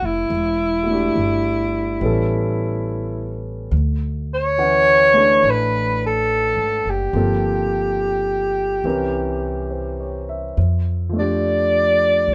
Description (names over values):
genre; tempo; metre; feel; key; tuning
jazz ballad; 70 BPM; 4/4; swing 67% on 8ths; unclear; A4 = 440 Hz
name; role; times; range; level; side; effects
breathy alto saxophone; melody; 0.0-12.3 s; E4 to D5; -20 LUFS; equal; none
warm concert grand piano; accompaniment; 0.0-12.3 s; E3 to F#5; -27 LUFS; equal; none
upright bass; bass; 0.0-12.3 s; E1 to F2; -26 LUFS; equal; none
room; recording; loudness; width
light reverb; none; -19 LUFS; mono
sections
0.0-12.3 A section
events
none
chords
0.3 Em11; 2.0 A9; 3.7 Dmaj9; 7.1 Gm11; 8.8 C7b9; 10.6 F69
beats
| 0.30 1.16 2.01 2.87 | 3.72 4.57 5.43 6.28 | 7.14 7.99 8.85 9.70 | 10.56 11.42 12.28